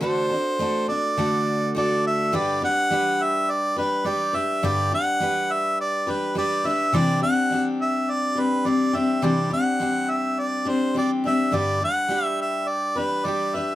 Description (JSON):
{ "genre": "pop", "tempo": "104 BPM", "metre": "4/4", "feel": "straight", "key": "G major", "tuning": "A4 = 440 Hz", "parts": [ { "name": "warm harmonica", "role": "melody", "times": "0.0-13.8 s", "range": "B4 to F#5", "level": "-23 LUFS", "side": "right 1 dB", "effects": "none" }, { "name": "picked steel-string acoustic guitar", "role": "accompaniment", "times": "0.0-13.8 s", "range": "G2 to B4", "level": "-24 LUFS", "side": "left 1 dB", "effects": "none" } ], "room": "moderate studio ambience, RT60 0.5 s", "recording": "none", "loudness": "-20 LUFS", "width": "side -14 dB against mid", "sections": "0.0-2.3 A section; 2.3-13.8 B section", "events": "none", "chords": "0.0 D; 2.3 G; 6.9 Cadd9; 11.5 G", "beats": "| 0.04 0.61 1.19 1.76 | 2.34 2.91 3.49 4.06 | 4.64 5.21 5.79 6.36 | 6.93 7.51 8.09 8.66 | 9.23 9.81 10.38 10.96 | 11.54 12.11 12.69 13.26" }